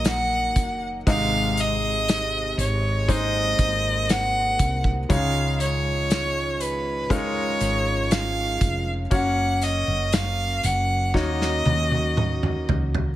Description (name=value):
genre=pop ballad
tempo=60 BPM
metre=4/4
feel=straight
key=unclear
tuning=A4 = 440 Hz
part: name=clear violin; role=melody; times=0.0-12.7 s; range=Cb5 to Gb5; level=-25 LUFS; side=right 1 dB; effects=none
part: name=clear grand piano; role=accompaniment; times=0.0-13.2 s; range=Ab2 to Eb5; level=-29 LUFS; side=left 3 dB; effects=none
part: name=dark French horn section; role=sustained chords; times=0.0-13.2 s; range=C3 to Gb4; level=-32 LUFS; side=right 1 dB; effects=none
part: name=woody fretless electric bass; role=bass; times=0.0-13.2 s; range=F1 to Eb2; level=-27 LUFS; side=equal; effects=none
part: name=loose indie drum kit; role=drums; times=0.0-13.2 s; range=hi-hat, kick drum, snare drum, toms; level=-24 LUFS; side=equal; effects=none
room=small room ambience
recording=none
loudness=-20 LUFS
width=side -14 dB against mid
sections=0.0-13.2 A section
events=drum fill 11.1-13.2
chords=0.0 Ebm; 1.1 Ab; 5.1 Dbadd9; 9.1 Gb; 11.1 Ebm7